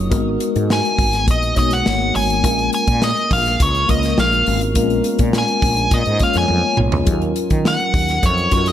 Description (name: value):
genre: polished 1980s jazz-funk pop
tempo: 104 BPM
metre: 4/4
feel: straight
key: unclear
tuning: A4 = 440 Hz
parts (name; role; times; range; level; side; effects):
- mellow tine electric piano; accompaniment; 0.0-8.7 s; Gb3 to Db5; -21 LUFS; left 2 dB; medium stereo tremolo, lush chorus
- woody fretless electric bass; bass; 0.0-8.7 s; Gb1 to Eb3; -20 LUFS; equal; none
- modern studio drum kit; drums; 0.1-8.7 s; hi-hat, kick drum, snare drum, toms; -20 LUFS; equal; gated reverb
- nasal lead guitar with a parked wah; melody; 0.7-8.7 s; Db5 to Ab5; -19 LUFS; equal; overdrive, tape echo
room: light reverb, small room ambience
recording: none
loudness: -14 LUFS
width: side -11 dB against mid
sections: 0.0-8.7 A section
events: drum fill 6.5-7.1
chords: 0.1 Abm9; 2.4 Bbm7; 7.1 Ebm7